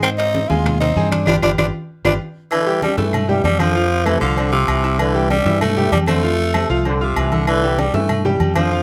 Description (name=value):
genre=latin, salsa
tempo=194 BPM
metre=4/4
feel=straight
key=C major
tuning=A4 = 440 Hz
part: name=growling tenor saxophone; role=melody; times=0.0-8.8 s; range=C3 to F4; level=-21 LUFS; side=equal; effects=none
part: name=bright concert grand piano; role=accompaniment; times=0.0-8.8 s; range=F3 to F6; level=-25 LUFS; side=equal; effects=none
part: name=fretless electric bass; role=bass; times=0.0-8.8 s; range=G1 to G#2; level=-22 LUFS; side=equal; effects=none
part: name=claves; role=percussion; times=0.0-8.7 s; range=none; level=-32 LUFS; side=equal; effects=none
part: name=congas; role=percussion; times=0.0-8.8 s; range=none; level=-26 LUFS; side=equal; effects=none
part: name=timbales and agogo bells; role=percussion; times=0.0-8.7 s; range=none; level=-29 LUFS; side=equal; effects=none
part: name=mellow trombone section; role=second line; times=2.5-8.8 s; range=C3 to E3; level=-29 LUFS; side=equal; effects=none
room=light reverb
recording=none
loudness=-17 LUFS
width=mono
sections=0.0-2.5 A section; 2.5-8.8 B section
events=band accent 1.3-2.5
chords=0.0 Abmaj7; 1.3 G7; 2.5 C; 3.8 Fmaj7; 5.0 C; 6.2 Fmaj7; 7.5 C